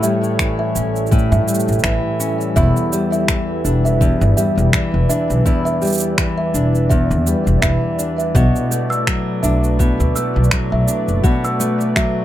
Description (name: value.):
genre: folktronica.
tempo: 83 BPM.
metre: 4/4.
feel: swing 56% on 16ths.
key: E dorian.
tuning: A4 = 440 Hz.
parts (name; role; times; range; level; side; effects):
kalimba; second line; 0.0-12.2 s; E5 to E6; -24 LUFS; right 2 dB; ping-pong delay, plate reverb.
warbly tape-like pad; sustained chords; 0.0-12.2 s; G3 to D5; -24 LUFS; equal; chorus, built-in reverb, plate reverb.
nylon-string guitar; arpeggios; 0.0-12.2 s; E2 to F#4; -19 LUFS; left 1 dB; ping-pong delay, plate reverb.
electronic cabasa and finger snaps; drums; 0.0-12.1 s; none; -22 LUFS; right 1 dB; none.
electronic kick drum; drums; 0.4-12.1 s; none; -18 LUFS; equal; none.
upright bass; bass; 0.8-11.2 s; E1 to A2; -18 LUFS; equal; tube saturation.
room: light reverb.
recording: none.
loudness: -14 LUFS.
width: side -13 dB against mid.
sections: 0.0-12.2 A section.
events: none.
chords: 0.0 A7; 2.6 Em7; 8.3 Bm7.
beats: 0.40 1.12 1.84 | 2.56 3.29 4.01 4.73 | 5.46 6.18 6.90 7.62 | 8.35 9.07 9.79 10.52 | 11.24 11.96.